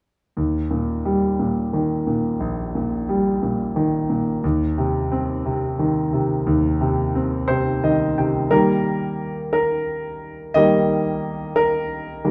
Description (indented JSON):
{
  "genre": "pop",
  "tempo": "59 BPM (dotted quarters)",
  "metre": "6/8",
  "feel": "straight",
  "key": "Eb major",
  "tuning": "A4 = 440 Hz",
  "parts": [
    { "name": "clear grand piano", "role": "solo", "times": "0.4-12.3 s", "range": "Bb1 to G5", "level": "-21 LUFS", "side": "equal", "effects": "none" }
  ],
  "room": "wet studio reverb, RT60 0.8 s",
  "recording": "band playing live in one room",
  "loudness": "-21 LUFS",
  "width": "mono",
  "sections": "0.4-8.5 A section; 8.5-12.3 B section",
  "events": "grand piano fill 7.5-8.5; grand piano solo 8.5-12.3",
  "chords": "0.4 Eb; 4.4 Eb5; 8.5 Eb"
}